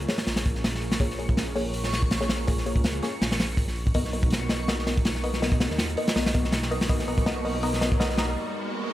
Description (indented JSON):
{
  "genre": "drum and bass, jungle",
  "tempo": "163 BPM",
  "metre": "4/4",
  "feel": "swing 54% on 16ths",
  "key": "unclear",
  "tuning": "A4 = 440 Hz",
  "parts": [
    { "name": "airy breathy pad", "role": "sustained chords", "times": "0.0-8.9 s", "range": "Bb3 to Bb4", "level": "-35 LUFS", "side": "right 2 dB", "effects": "chorus, vintage 12-bit sampler grit" },
    { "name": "detuned saw bass", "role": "bass", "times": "0.0-8.4 s", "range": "Bb1 to D#2", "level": "-31 LUFS", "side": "equal", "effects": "none" },
    { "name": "crunchy breakbeat drum kit", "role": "drums", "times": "0.0-8.3 s", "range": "hi-hat, kick drum, snare drum", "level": "-25 LUFS", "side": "equal", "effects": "none" },
    { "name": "backwards swelling texture", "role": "texture", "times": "0.0-8.4 s", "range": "Db6", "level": "-39 LUFS", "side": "equal", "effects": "built-in reverb" },
    { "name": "filtered dub chord stab", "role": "stabs", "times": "0.1-8.3 s", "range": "Bb3 to D#5", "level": "-31 LUFS", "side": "left 2 dB", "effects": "chorus, dub echo" },
    { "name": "riser and noise sweep", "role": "sound effects", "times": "5.9-8.9 s", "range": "none", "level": "-38 LUFS", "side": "equal", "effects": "none" }
  ],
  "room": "light reverb, studio ambience",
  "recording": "none",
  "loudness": "-23 LUFS",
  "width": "side -14 dB against mid",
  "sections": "0.0-8.9 A section",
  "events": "build-up 0.0-8.9; filter sweep on analog synth pad 0.0-8.9; filter sweep on synth stab 0.0-8.9; riser 5.9-8.9; break 8.4-8.9; noise sweep 8.4-8.9",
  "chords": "0.0 Bbm7; 4.0 Bmaj7"
}